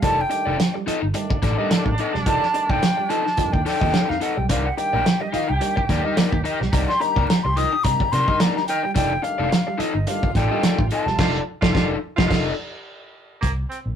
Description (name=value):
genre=funk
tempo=108 BPM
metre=4/4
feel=swing 56% on 16ths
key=unclear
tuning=A4 = 440 Hz
part: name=breathy silver concert flute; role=melody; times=0.0-11.4 s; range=Eb5 to Eb6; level=-23 LUFS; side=left 1 dB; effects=none
part: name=crunchy overdriven guitar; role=accompaniment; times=0.0-12.5 s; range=Eb4 to Eb5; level=-26 LUFS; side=left 5 dB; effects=none
part: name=electric guitar at the edge of break-up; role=riff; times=0.0-11.2 s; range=F3 to C4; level=-32 LUFS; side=right 6 dB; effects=none
part: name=percussive tonewheel organ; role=stabs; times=0.0-12.5 s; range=Eb3 to D4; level=-32 LUFS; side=right 1 dB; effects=slow rotary speaker
part: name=vintage muted fingered electric bass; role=bass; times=0.0-13.9 s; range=E1 to C3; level=-26 LUFS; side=equal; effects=none
part: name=warm soul drum kit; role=drums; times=0.0-13.9 s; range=crash cymbal, hi-hat, kick drum, snare drum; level=-22 LUFS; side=right 1 dB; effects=none
part: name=clear baritone saxophone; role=second line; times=1.1-13.8 s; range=Bb3 to G4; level=-31 LUFS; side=right 4 dB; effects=none
room=moderate small room reverb, RT60 0.5 s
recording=rough rehearsal-room recording, warm saturation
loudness=-18 LUFS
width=side -8 dB against mid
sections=0.0-13.4 A section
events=flute solo 0.0-13.4; band accent 11.2-13.4; break 12.9-13.4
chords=0.0 F13; 4.5 Cm9; 9.0 F13; 13.4 C7(no3)